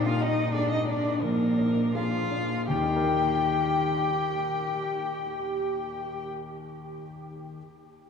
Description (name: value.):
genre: quick classical-period movement for piano trio.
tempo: 81-93 BPM.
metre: 4/4.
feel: rubato.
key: Eb major.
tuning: A4 = 440 Hz.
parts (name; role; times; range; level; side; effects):
muted cello; second line; 0.0-6.2 s; Bb3 to G4; -29 LUFS; right 2 dB; none.
dark grand piano; accompaniment; 0.0-7.6 s; Eb2 to G5; -30 LUFS; left 3 dB; none.
muted violin; melody; 0.1-6.2 s; Bb4 to G5; -31 LUFS; left 7 dB; none.
room: wet huge ambient reverb, RT60 7.4 s.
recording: in a vast, echoing space.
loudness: -24 LUFS.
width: side -6 dB against mid.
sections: 0.0-2.7 A section; 2.7-5.5 B section.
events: slowing down 0.0-2.7.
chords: 0.0 Bb7; 2.7 Eb.